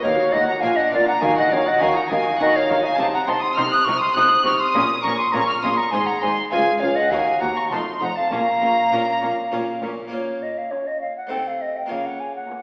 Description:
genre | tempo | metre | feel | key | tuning
classical, baroque-style concerto movement with solo episodes | 102 BPM | 3/4 | straight | Bb minor | A4 = 440 Hz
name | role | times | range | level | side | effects
concert flute | melody | 0.0-12.6 s | Db5 to Eb6 | -20 LUFS | equal | none
rich chamber violin section | melody | 0.0-12.6 s | A4 to Gb6 | -27 LUFS | equal | none
rich studio violin section | second line | 0.0-12.6 s | Eb4 to Gb6 | -26 LUFS | equal | none
harpsichord | accompaniment | 0.0-12.6 s | Db2 to Db5 | -29 LUFS | equal | none
rich chamber viola section | accompaniment | 0.0-12.6 s | Bb3 to Gb4 | -29 LUFS | equal | none
rich chamber double bass section | bass | 0.0-9.9 s | F1 to Eb2 | -35 LUFS | equal | none
warm chamber cello section | bass | 0.0-12.4 s | Db2 to Eb3 | -28 LUFS | equal | none
room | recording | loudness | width
wet recital hall reverb, RT60 1.7 s | heard from further back in the room, AM radio sound | -17 LUFS | side -36 dB against mid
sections
0.0-10.1 A section; 10.1-12.6 B section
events
none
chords
0.0 Ebm; 0.6 Bb; 1.2 Ebm; 3.0 F7b9/C; 4.7 Bbm; 5.9 Ab5; 6.5 Db; 7.1 Ebm; 7.7 F7; 8.3 Bbm; 11.3 Adim/C; 11.9 Bbm/Db

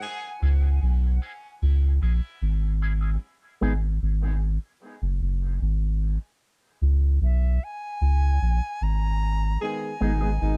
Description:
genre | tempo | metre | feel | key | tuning
reggae | 75 BPM | 4/4 | straight | C# dorian | A4 = 441 Hz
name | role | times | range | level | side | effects
bright reedy silver concert flute | melody | 0.0-0.4, 7.2-10.6 s | E5 to A#5 | -36 LUFS | equal | dub echo
mellow horn section | second line | 0.0-2.8, 9.6-10.6 s | G#2 to G#4 | -36 LUFS | equal | high-pass filter
electric guitar with an envelope filter | accompaniment | 0.4-3.7, 10.0-10.3 s | G#3 to G#4 | -34 LUFS | equal | harmonic tremolo, high-pass filter, dub echo
soft dub sub bass | bass | 0.4-10.6 s | F#1 to C#2 | -24 LUFS | equal | none
room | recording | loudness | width
little or no reverb | dry, close 1970s-style studio recording | -25 LUFS | mono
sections
0.0-10.6 A section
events
filter sweep 0.0-3.2; break 0.0-6.4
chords
0.0 C#m; 3.2 N.C.; 4.8 F#sus2; 6.4 C#5; 9.6 G#m

